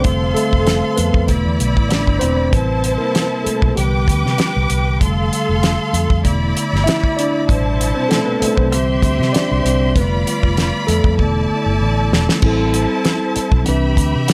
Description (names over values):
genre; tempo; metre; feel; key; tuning
lush 1970s-style soul; 97 BPM; 4/4; swing 54% on 16ths; A minor; A4 = 436 Hz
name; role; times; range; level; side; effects
bright studio string section; second line; 0.0-14.3 s; E4 to D6; -24 LUFS; equal; none
tine electric piano; accompaniment; 0.0-14.3 s; B2 to E5; -22 LUFS; equal; none
vintage muted fingered electric bass; bass; 0.0-14.3 s; E1 to C3; -21 LUFS; equal; none
damped 70s drum kit; drums; 0.0-14.3 s; crash cymbal, hi-hat, kick drum, snare drum; -20 LUFS; equal; none
room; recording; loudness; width
light reverb, small room ambience; none; -16 LUFS; mono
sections
0.0-12.4 A section; 12.4-14.3 A section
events
tine electric piano solo 0.0-12.4; drum fill 11.2-12.4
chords
0.1 F6; 1.3 E7sus4; 2.5 Am7; 3.8 Cmaj9; 5.0 F6; 6.2 E7sus4; 7.5 Am7; 8.7 Cadd9; 10.0 F6; 11.2 E7sus4; 12.4 Am7; 13.7 Cmaj9